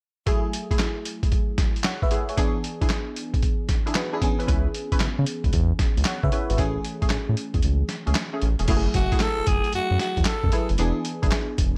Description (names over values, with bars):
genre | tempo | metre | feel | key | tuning
R&B, new jack swing | 114 BPM | 4/4 | swing 67% on 16ths | F# minor | A4 = 443 Hz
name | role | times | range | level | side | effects
FM electric piano | accompaniment | 0.3-11.8 s | E3 to F#5 | -33 LUFS | equal | chorus, tremolo
funky polysynth comp | stabs | 0.3-11.4 s | A3 to B4 | -35 LUFS | equal | chorus, digital delay
boom bap sampler-style drum kit | drums | 0.3-11.7 s | crash cymbal, handclaps, hi-hat, kick drum, snare drum | -26 LUFS | equal | none
round analog bass | bass | 4.5-11.8 s | E1 to C#3 | -26 LUFS | equal | none
growling alto saxophone | melody | 9.0-10.7 s | F#4 to A4 | -29 LUFS | equal | none
room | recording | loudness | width
little or no reverb | none | -24 LUFS | mono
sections
0.3-8.7 A section; 8.7-11.8 B section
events
kick muted 7.6-8.7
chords
0.3 F#m9; 2.4 E7; 4.2 C#m7; 6.6 Amaj7; 8.7 F#m9; 10.8 E7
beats
| 0.27 0.79 1.32 1.84 | 2.37 2.90 3.42 3.95 | 4.48 5.00 5.53 6.05 | 6.58 7.11 7.63 8.16 | 8.69 9.21 9.74 10.27 | 10.79 11.32